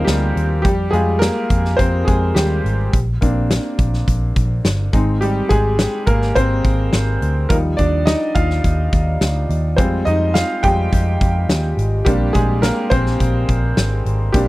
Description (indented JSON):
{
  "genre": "piano-driven pop",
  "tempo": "105 BPM",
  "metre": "4/4",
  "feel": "straight",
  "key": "Eb major",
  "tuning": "A4 = 440 Hz",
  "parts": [
    { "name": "bright upright piano", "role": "accompaniment", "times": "0.0-14.5 s", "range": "F3 to G5", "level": "-19 LUFS", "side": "equal", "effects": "none" },
    { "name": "vintage muted picked electric bass", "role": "bass", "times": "0.0-14.5 s", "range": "G1 to F2", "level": "-18 LUFS", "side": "equal", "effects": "none" },
    { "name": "huge arena drum kit", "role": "drums", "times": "0.1-14.5 s", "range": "hi-hat, kick drum, snare drum", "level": "-19 LUFS", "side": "equal", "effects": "none" }
  ],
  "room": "little or no reverb",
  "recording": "dry, close 1970s-style studio recording",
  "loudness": "-15 LUFS",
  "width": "side -18 dB against mid",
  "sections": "0.0-14.5 A section",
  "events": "upright piano solo 0.0-14.5",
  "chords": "0.0 Ebadd9; 0.6 Fmadd9; 2.9 Bbadd9; 4.9 Ab; 7.5 Ebadd9; 9.8 Fmadd9; 12.1 Bbadd9"
}